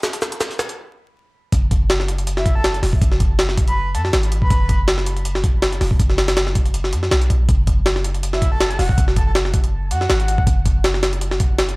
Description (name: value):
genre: drum and bass, jungle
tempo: 161 BPM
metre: 4/4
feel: swing 54% on 16ths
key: F# minor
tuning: A4 = 440 Hz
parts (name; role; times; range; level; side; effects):
- crunchy breakbeat drum kit; drums; 0.0-0.7 s; hi-hat, shaker, snare drum; -34 LUFS; equal; high-pass filter on hats, high-pass filter on snare, high-pass filter on perc, high-pass filter on room
- jungle sampler-style drum kit; drums; 0.0-11.8 s; hi-hat, kick drum, snare drum; -17 LUFS; equal; none
- warm 808-style bass; bass; 1.5-11.8 s; E1 to F#2; -20 LUFS; equal; none
- breathy flute-like synth lead; melody; 2.4-4.8, 8.3-10.4 s; E5 to B5; -27 LUFS; equal; analog chorus, dub echo
room: studio reverb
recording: dry, gritty hardware recording, vinyl crackle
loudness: -16 LUFS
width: side -25 dB against mid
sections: 0.0-1.5 A section; 1.5-11.8 B section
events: build-up 0.0-1.5; drum fill 0.0-0.8; break 0.8-1.5; drop 1.5-11.8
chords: 0.0 N.C.; 1.5 F#5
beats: | 0.03 0.41 0.78 1.15 | 1.52 1.90 2.27 2.64 | 3.01 3.39 3.76 4.13 | 4.50 4.88 5.25 5.62 | 6.00 6.37 6.74 7.11 | 7.49 7.86 8.23 8.60 | 8.98 9.35 9.72 10.10 | 10.47 10.84 11.21 11.59